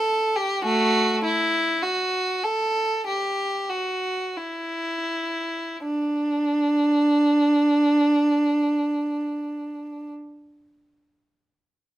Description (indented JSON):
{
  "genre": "classical, baroque-style suite movement for unaccompanied violin",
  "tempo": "40-54 BPM",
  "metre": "4/4",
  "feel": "rubato",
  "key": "D major",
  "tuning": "A4 = 440 Hz",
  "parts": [
    { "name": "rich violin", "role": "solo", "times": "0.0-10.1 s", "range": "A3 to A4", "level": "-21 LUFS", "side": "right 1 dB", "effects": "none" }
  ],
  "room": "light reverb",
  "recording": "close, detailed microphones",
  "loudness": "-21 LUFS",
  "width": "side -14 dB against mid",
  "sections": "0.0-5.8 A section; 5.8-11.5 B section",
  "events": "slowing down 0.0-5.8",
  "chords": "none"
}